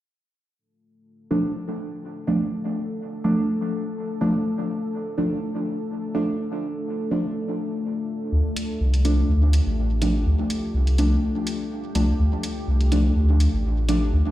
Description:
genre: dub techno.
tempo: 124 BPM.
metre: 4/4.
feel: swing 54% on 16ths.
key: D minor.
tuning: A4 = 442 Hz.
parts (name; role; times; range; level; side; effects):
deep dark ambient pad; sustained chords; 1.6-14.3 s; A3 to A4; -30 LUFS; left 2 dB; chorus, built-in reverb.
deep mellow chord stab; stabs; 1.3-14.0 s; F3 to D4; -25 LUFS; equal; chorus, phaser, dub echo.
pure sine sub bass; bass; 8.3-14.2 s; A1 to D2; -19 LUFS; equal; none.
electronic hi-hat; drums; 8.6-14.0 s; none; -35 LUFS; right 1 dB; none.
room: light reverb.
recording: played on a big sound system in a bare room, large studio reverb.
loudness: -21 LUFS.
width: side -14 dB against mid.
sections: 0.6-14.3 A section.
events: filter sweep on synth stab 0.6-14.3.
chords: 0.6 Dm.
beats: | 0.58 1.06 1.55 2.03 | 2.52 3.00 3.48 3.97 | 4.45 4.94 5.42 5.90 | 6.39 6.87 7.36 7.84 | 8.32 8.81 9.29 9.77 | 10.26 10.74 11.23 11.71 | 12.19 12.68 13.16 13.64 | 14.13.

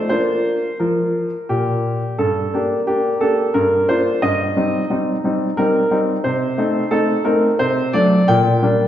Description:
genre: classical-period piano sonatina.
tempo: 89 BPM.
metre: 3/4.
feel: straight.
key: G minor.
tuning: A4 = 437 Hz.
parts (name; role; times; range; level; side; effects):
clear concert grand piano; solo; 0.0-8.9 s; G2 to G5; -15 LUFS; equal; none.
room: wet recital hall reverb, RT60 1.8 s.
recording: heard from further back in the room.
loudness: -15 LUFS.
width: side -11 dB against mid.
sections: 0.0-2.2 A section; 2.2-8.9 B section.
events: none.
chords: 0.1 Bb; 2.2 Gm; 3.5 Bb/G; 4.2 Cm/G; 6.2 Adim/C; 7.6 D7/C; 8.3 Gm/Bb.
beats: | 0.10 0.80 1.50 | 2.19 2.88 3.55 | 4.23 4.91 5.58 | 6.24 6.91 7.58 | 8.27.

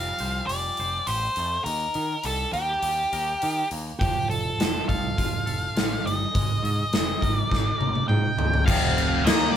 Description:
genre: quiet-loud alternative rock.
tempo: 103 BPM.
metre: 4/4.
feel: straight.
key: F mixolydian.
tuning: A4 = 439 Hz.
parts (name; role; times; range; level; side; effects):
octave-fuzz lead guitar; melody; 0.0-9.6 s; G4 to G5; -26 LUFS; equal; distortion.
twangy electric guitar; arpeggios; 0.0-8.7 s; Eb3 to C5; -37 LUFS; right 2 dB; none.
overdriven picked electric bass; bass; 0.0-9.6 s; F1 to Eb3; -31 LUFS; equal; none.
big rock drum kit; drums; 0.2-9.4 s; crash cymbal, hi-hat, kick drum, snare drum, toms; -26 LUFS; equal; none.
raw garage guitar; riff; 8.7-9.6 s; F2 to Eb4; -24 LUFS; left 1 dB; overdrive, phaser.
room: light reverb.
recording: band playing live in one room.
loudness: -22 LUFS.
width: side -9 dB against mid.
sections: 0.0-8.7 A section.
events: drum fill 7.5-8.7.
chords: 0.0 Fadd9; 1.7 Eb; 4.0 Fadd9; 6.3 Abadd9; 8.7 F5.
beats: 0.50 1.08 | 1.67 2.25 2.84 3.42 | 4.01 4.59 5.18 5.76 | 6.35 6.93 7.52 8.10 | 8.68 9.26.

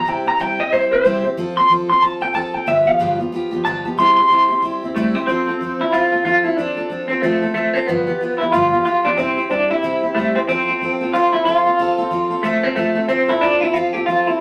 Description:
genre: rock.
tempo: 184 BPM.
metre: 4/4.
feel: swing 60% on 8ths.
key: C major.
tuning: A4 = 440 Hz.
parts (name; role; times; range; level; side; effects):
electric guitar through a small old amp; melody; 0.0-14.4 s; A3 to C6; -18 LUFS; equal; tremolo.
picked steel-string acoustic guitar; accompaniment; 0.0-14.4 s; G2 to A4; -25 LUFS; equal; none.
room: wet booth ambience, RT60 0.2 s.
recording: rough rehearsal-room recording.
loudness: -17 LUFS.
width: mono.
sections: 0.0-5.3 A section; 5.3-14.4 B section.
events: clean electric guitar solo 0.0-5.3.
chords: 0.1 C; 1.4 F; 2.7 G7; 4.0 C; 5.3 F; 7.9 G7; 9.2 C; 10.5 F.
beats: | 0.07 0.40 0.72 1.05 | 1.37 1.70 2.02 2.35 | 2.68 3.00 3.33 3.65 | 3.98 4.30 4.63 4.95 | 5.28 5.61 5.93 6.26 | 6.58 6.91 7.23 7.56 | 7.89 8.21 8.54 8.86 | 9.19 9.52 9.84 10.17 | 10.49 10.82 11.14 11.47 | 11.80 12.12 12.45 12.78 | 13.10 13.43 13.75 14.08 | 14.40.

